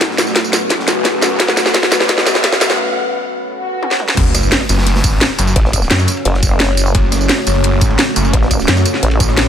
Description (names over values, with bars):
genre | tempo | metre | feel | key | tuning
dark technical drum and bass | 173 BPM | 4/4 | straight | F# minor | A4 = 441 Hz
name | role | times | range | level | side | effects
deep dark ambient pad | sustained chords | 0.0-9.5 s | A3 to C#5 | -20 LUFS | equal | chorus, built-in reverb, sidechain pumping
snarling distorted saw bass | bass | 0.0-9.5 s | F#1 to F#2 | -17 LUFS | equal | distortion, overdrive, high-pass filter
crunchy breakbeat drum kit | drums | 0.0-9.5 s | hi-hat, ride cymbal, snare drum | -26 LUFS | equal | none
drum and bass drum kit | drums | 0.0-9.4 s | crash cymbal, hi-hat, rim click, snare drum, tambourine, toms | -14 LUFS | equal | none
electronic kick drum | drums | 0.0-9.3 s | none | -15 LUFS | equal | high-pass filter on kick, high-pass filter on room
riser, swell and sub drop | sound effects | 0.1-5.6 s | none | -22 LUFS | equal | none
vowel-sweep wobble bass | bass | 5.6-9.2 s | F#1 to A1 | -15 LUFS | equal | chorus, tube saturation
room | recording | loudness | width
light reverb | high-pass filter | -11 LUFS | side -9 dB against mid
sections
0.0-4.2 A section; 4.2-9.5 B section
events
build-up 0.0-4.2; drum fill 0.0-2.8, 3.8-4.2; riser 0.1-2.8; break 2.8-4.2; swell 3.5-4.2; drop 4.2-9.5; impact 4.2-5.6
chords
0.0 F#m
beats
| 0.01 0.36 0.70 1.05 | 1.40 1.75 2.09 2.44 | 2.79 3.13 3.48 3.83 | 4.17 4.52 4.87 5.21 | 5.56 5.91 6.25 6.60 | 6.95 7.29 7.64 7.99 | 8.34 8.68 9.03 9.38